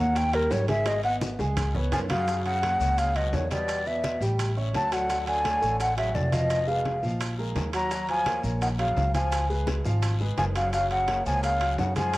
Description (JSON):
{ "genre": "Afro-Cuban jazz", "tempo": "170 BPM", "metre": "4/4", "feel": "straight", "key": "F# major", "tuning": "A4 = 440 Hz", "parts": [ { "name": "breathy mellow silver concert flute", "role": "melody", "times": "0.0-12.2 s", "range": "A#4 to A#5", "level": "-27 LUFS", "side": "equal", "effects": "cassette tape" }, { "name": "warm concert grand piano", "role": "accompaniment", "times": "0.0-12.2 s", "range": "E#3 to G#5", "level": "-33 LUFS", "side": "right 1 dB", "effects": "cassette tape" }, { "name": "upright bass", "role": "bass", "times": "0.0-12.2 s", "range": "E#1 to F#2", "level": "-28 LUFS", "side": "equal", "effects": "none" }, { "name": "bongos", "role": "percussion", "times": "0.2-12.2 s", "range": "none", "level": "-40 LUFS", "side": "left 4 dB", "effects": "none" }, { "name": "congas", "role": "percussion", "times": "0.2-12.2 s", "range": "none", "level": "-34 LUFS", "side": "left 1 dB", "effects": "none" }, { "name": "guiro", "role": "percussion", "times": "0.2-12.2 s", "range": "none", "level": "-44 LUFS", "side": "left 7 dB", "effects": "none" }, { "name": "maracas", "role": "percussion", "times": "0.2-12.2 s", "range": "none", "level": "-46 LUFS", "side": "right 2 dB", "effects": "none" }, { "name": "timbales", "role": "percussion", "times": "0.2-12.2 s", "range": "none", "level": "-37 LUFS", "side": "right 4 dB", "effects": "none" }, { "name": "brilliant trombone", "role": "second line", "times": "1.9-12.2 s", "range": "A2 to F#3", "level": "-37 LUFS", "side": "right 2 dB", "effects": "cassette tape" } ], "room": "moderate spring reverb, RT60 2.4 s", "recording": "home recording on cassette, lossy compression artefacts", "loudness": "-23 LUFS", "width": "side -18 dB against mid", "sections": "0.0-2.3 A section; 2.3-12.2 B section", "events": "flute solo 0.0-2.3; drum fill 0.9-2.3", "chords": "0.2 D#7; 0.9 G#m; 1.6 C#5; 2.3 F#; 3.7 Em7; 4.4 A6; 5.1 Dmaj7; 6.5 Fdim; 7.2 A#5; 7.9 D#m9; 9.3 C#7; 10.7 F#maj9" }